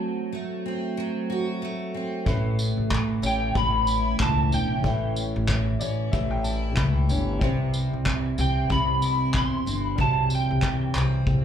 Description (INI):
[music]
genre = acoustic pop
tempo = 93 BPM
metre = 4/4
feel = swing 60% on 16ths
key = unclear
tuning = A4 = 441 Hz
[part]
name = electric guitar at the edge of break-up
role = melody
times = 0.0-11.4 s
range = G5 to C6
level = -26 LUFS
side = right 1 dB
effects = ensemble chorus, slapback echo
[part]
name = picked steel-string acoustic guitar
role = accompaniment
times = 0.0-11.4 s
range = A2 to F#4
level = -28 LUFS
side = equal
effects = double-tracked left and right
[part]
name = clear upright piano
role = accompaniment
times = 2.2-11.4 s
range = F#3 to B5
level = -37 LUFS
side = left 4 dB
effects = slapback echo
[part]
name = upright bass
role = bass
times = 2.3-11.4 s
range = E1 to E2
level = -25 LUFS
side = equal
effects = none
[part]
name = vintage brush drum kit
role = drums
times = 2.3-11.4 s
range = handclaps, kick drum, tambourine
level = -28 LUFS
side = left 1 dB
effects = none
[sound]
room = light reverb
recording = live gig heard through the venue's PA, club reverb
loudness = -22 LUFS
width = side -9 dB against mid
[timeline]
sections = 0.0-11.4 A section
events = upright piano fill 5.5-7.4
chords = 0.0 F#dim; 2.3 Aadd9; 7.4 C